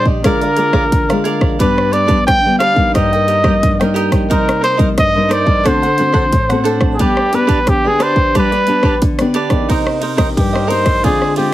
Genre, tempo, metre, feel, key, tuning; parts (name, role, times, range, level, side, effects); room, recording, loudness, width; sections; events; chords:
samba and choro; 89 BPM; 4/4; straight; C minor; A4 = 440 Hz
warm trumpet; melody; 0.0-11.5 s; G4 to G5; -15 LUFS; equal
cavaquinho; accompaniment; 0.0-11.5 s; D4 to G5; -19 LUFS; right 4 dB
nylon-string guitar; accompaniment; 0.0-11.5 s; G2 to G4; -17 LUFS; left 2 dB
pop drum kit; drums; 0.1-11.5 s; hi-hat, kick drum, ride cymbal, rim click; -16 LUFS; equal
light reverb; heavily compressed radio sound; -11 LUFS; side -14 dB against mid
0.0-9.7 A section; 9.7-11.5 B section
trumpet solo 9.7-11.5
0.2 Bb7/D; 1.6 G; 3.0 Eb/G; 4.3 Cm7; 5.7 D7; 7.0 G; 9.7 Cm7